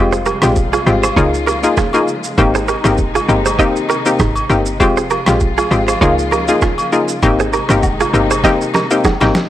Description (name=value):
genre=afrobeats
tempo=99 BPM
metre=4/4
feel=swing 55% on 16ths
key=Ab major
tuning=A4 = 440 Hz
part: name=hollow square pluck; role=accompaniment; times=0.0-9.4 s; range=Ab3 to Ab4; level=-15 LUFS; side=left 2 dB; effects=chorus
part: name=warm studio string section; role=sustained chords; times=0.0-9.5 s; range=C3 to F4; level=-22 LUFS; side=left 2 dB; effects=none
part: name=woody log drum bass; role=bass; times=0.0-9.3 s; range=F1 to Db2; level=-18 LUFS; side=right 1 dB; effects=none
part: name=direct-recorded clean electric guitar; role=riff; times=0.1-9.3 s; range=Eb4 to Eb5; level=-20 LUFS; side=right 7 dB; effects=spring reverb, analog delay
part: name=lo-fi sampler-style drum kit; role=drums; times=0.1-9.5 s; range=kick drum, rim click, shaker, snare drum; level=-19 LUFS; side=right 1 dB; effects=overdrive
part: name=agogo bells and woodblock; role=percussion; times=0.3-9.3 s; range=none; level=-23 LUFS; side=equal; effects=none
room=digital ambience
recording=dry, gritty hardware recording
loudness=-12 LUFS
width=side -12 dB against mid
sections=0.0-9.5 A section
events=drum fill 8.4-9.5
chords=0.0 Fmadd9; 1.2 Db6; 2.4 Abmaj7; 4.8 Fmadd9; 6.0 Db6; 7.2 Abmaj7